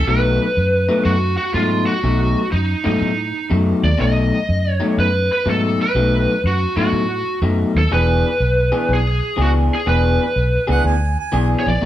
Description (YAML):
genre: blues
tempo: 123 BPM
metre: 4/4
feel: swing 67% on 8ths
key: B mixolydian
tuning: A4 = 439 Hz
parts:
  - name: lead guitar through a small cranked amp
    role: melody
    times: 0.0-11.9 s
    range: D#4 to D#5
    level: -20 LUFS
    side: right 1 dB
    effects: overdrive
  - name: mellow harmonica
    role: second line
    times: 0.0-0.1, 10.7-11.5 s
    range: F#5 to G#5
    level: -26 LUFS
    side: right 7 dB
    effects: none
  - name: electric guitar through a small old amp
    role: riff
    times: 0.1-11.9 s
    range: B2 to G#4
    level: -20 LUFS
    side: left 2 dB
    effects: vibrato effect
  - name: vintage muted fingered electric bass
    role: bass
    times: 0.1-11.9 s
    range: E1 to A2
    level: -19 LUFS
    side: equal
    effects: none
room: moderate stone room reverb, RT60 1.3 s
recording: band playing live in one room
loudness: -15 LUFS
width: side -12 dB against mid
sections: 0.1-11.9 A section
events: none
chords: 0.1 B7; 7.9 E7